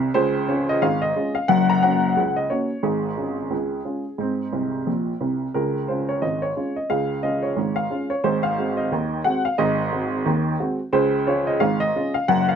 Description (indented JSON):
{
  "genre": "ragtime piano",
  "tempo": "89 BPM",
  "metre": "2/4",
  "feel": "swing 58% on 16ths",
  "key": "Db major",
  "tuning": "A4 = 441 Hz",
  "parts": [
    { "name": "warm upright piano", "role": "solo", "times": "0.0-12.6 s", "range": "Gb1 to Bb5", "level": "-20 LUFS", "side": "equal", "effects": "none" }
  ],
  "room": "light reverb",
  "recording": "close, detailed microphones",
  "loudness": "-20 LUFS",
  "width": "side -7 dB against mid",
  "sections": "0.0-12.6 A section",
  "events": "upright piano fill 4.5-5.5",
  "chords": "0.2 Db; 1.5 Gb; 2.8 Db/Ab; 4.2 Ab; 5.5 Db; 8.2 Ab7; 10.9 Db"
}